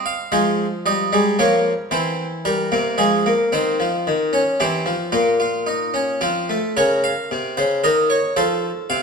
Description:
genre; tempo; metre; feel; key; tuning
classical, baroque-style 3-part fugue for harpsichord; 112 BPM; 3/4; straight; F minor, Bb minor from 3.5 s; A4 = 439 Hz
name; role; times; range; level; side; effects
harpsichord; solo; 0.0-9.0 s; Bb2 to F5; -17 LUFS; equal; none
room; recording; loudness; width
wet recital hall reverb, RT60 1.6 s; minimal, uncompressed stereo recording; -17 LUFS; side -5 dB against mid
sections
0.0-3.5 A section; 3.5-6.8 B section; 6.8-9.0 C section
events
none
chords
0.3 Fm; 1.4 Bbm/F; 1.9 C7/E; 3.0 Fm; 3.5 Dbmaj9/Eb; 4.6 C/E; 5.1 Fsus4/Bb; 6.2 F; 6.8 Bbm/Db; 7.8 Bbmadd11/Eb; 8.4 F

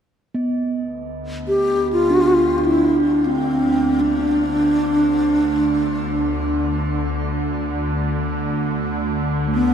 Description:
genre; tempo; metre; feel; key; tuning
world meditative, free-time meditation music; free time; none; none; D dorian; A4 = 440 Hz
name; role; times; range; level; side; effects
bronze singing bowl; texture; 0.3-9.7 s; A3 to D4; -24 LUFS; right 3 dB; shimmer reverb
ethereal airy pad; drone; 1.0-9.7 s; D2; -24 LUFS; equal; ensemble chorus, built-in reverb
mellow hollow alto flute; melody; 1.5-9.7 s; B3 to G4; -19 LUFS; left 1 dB; shimmer reverb, tape echo
room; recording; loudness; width
wet cathedral reverb, RT60 4.2 s; none; -17 LUFS; side -8 dB against mid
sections
0.4-9.7 A section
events
none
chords
none

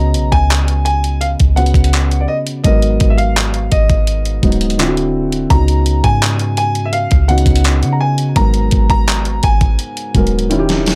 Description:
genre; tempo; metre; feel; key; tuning
contemporary R&B; 84 BPM; 4/4; straight; unclear; A4 = 440 Hz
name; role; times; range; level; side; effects
clear grand piano; melody; 0.0-10.5 s; D5 to A#5; -22 LUFS; equal; delay
felt-muted upright piano; accompaniment; 0.0-11.0 s; G#2 to D#5; -21 LUFS; equal; none
soft 808-style bass; bass; 0.0-11.0 s; D1 to C#3; -18 LUFS; equal; none
clean 12-bit digital drum machine; drums; 0.1-11.0 s; handclaps, hi-hat, kick drum, snare drum; -18 LUFS; equal; none
room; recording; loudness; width
little or no reverb; none; -14 LUFS; mono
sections
0.0-11.0 A section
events
drum fill 10.5-11.0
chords
0.0 C#9sus4; 2.6 G#m9; 4.8 D9; 5.5 C#9sus4; 8.4 G#m9

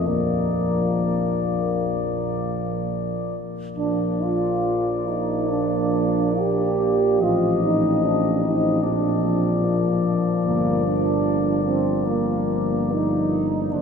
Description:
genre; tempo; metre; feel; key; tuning
classical, hymn-like piece for brass band; 62-76 BPM; 4/4; rubato; Bb major; A4 = 441 Hz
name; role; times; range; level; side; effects
dark cornet; melody; 0.0-13.8 s; C5 to Eb5; -28 LUFS; left 9 dB; none
mellow French horn section; second line; 0.0-13.8 s; Bb3 to G4; -24 LUFS; right 4 dB; none
clear euphonium; accompaniment; 0.0-13.8 s; Bb3 to C4; -30 LUFS; left 2 dB; none
dark tuba; bass; 0.0-13.8 s; F#1 to Bb1; -25 LUFS; left 1 dB; none
mellow euphonium; accompaniment; 0.1-13.8 s; D3 to F3; -28 LUFS; equal; none
room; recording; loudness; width
wet cathedral reverb, RT60 6.7 s; minimal, uncompressed stereo recording; -19 LUFS; side -6 dB against mid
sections
0.0-3.8 A section; 3.8-13.8 B section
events
none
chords
0.1 Bb; 7.2 F7/A; 8.8 Bb; 10.4 Gm7

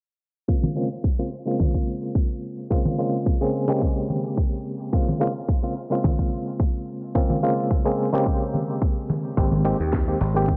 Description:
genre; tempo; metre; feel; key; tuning
nu-disco, nu disco; 108 BPM; 4/4; swing 53% on 16ths; Bb dorian; A4 = 440 Hz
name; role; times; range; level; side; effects
barky reed electric piano; accompaniment; 0.5-10.6 s; Db3 to Ab4; -27 LUFS; equal; overdrive, fast tremolo, sidechain pumping, low-pass filter, diffuse ambient delay
electronic kick drum; drums; 0.5-10.6 s; none; -25 LUFS; equal; none
congas; percussion; 0.6-10.6 s; none; -30 LUFS; equal; none
dry thumbed slap bass; bass; 9.4-10.6 s; Ab1 to Eb2; -26 LUFS; equal; sidechain pumping
house drum kit; drums; 9.7-10.3 s; hi-hat, snare drum; -33 LUFS; equal; none
room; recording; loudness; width
moderate lush hall reverb, RT60 1.8 s; dreamy mix soaked in reverb, low-pass filter; -24 LUFS; mono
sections
0.5-10.6 A section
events
filter sweep on reed electric piano 0.5-10.6; filter sweep 0.5-10.6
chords
0.5 Bbm9; 9.4 Abmaj9

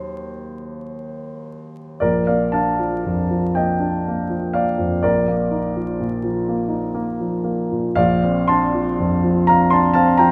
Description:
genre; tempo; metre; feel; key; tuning
classical, impressionist solo piano; 36-42 BPM (dotted quarters); 6/8; rubato; Bb major; A4 = 441 Hz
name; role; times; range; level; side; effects
warm grand piano; solo; 0.0-10.3 s; Bb1 to C6; -20 LUFS; equal; none
room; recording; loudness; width
wet recital hall reverb, RT60 1.4 s; vinyl crackle; -19 LUFS; mono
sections
0.0-2.0 A section; 2.0-10.3 A section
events
none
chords
0.0 Ebm6; 2.0 Bb; 5.0 Ebsus2/Bb; 8.0 Bbmaj9

